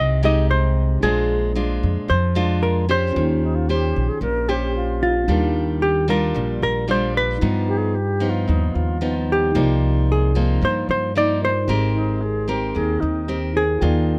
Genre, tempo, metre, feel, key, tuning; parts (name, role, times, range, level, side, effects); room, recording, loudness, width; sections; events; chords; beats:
bossa nova; 112 BPM; 4/4; straight; Eb major from 5.3 s; A4 = 445 Hz
hollow-body jazz guitar; melody; 0.0-14.2 s; F4 to Eb5; -24 LUFS; equal
nylon-string guitar; accompaniment; 0.0-14.2 s; G2 to C5; -26 LUFS; equal
tine electric piano; accompaniment; 0.0-14.2 s; Db4 to A#5; -33 LUFS; equal
upright bass; bass; 0.0-14.2 s; Ab1 to G2; -24 LUFS; equal
reedy alto flute; second line; 3.4-13.4 s; Eb4 to Bb4; -29 LUFS; equal
little or no reverb; close, detailed microphones; -20 LUFS; mono
0.0-5.3 A section; 5.3-14.2 B section
0.0 Fm9 (rootless); 1.0 Bb7; 3.1 Eb13; 5.3 Ebmaj9; 7.4 G7alt; 9.5 Cm11; 11.7 Abmaj9
0.49 | 1.02 1.55 2.08 2.62 | 3.15 3.68 4.22 4.75 | 5.28 5.82 6.35 6.88 | 7.42 7.95 8.48 9.02 | 9.55 10.08 10.62 11.15 | 11.68 12.22 12.75 13.28 | 13.82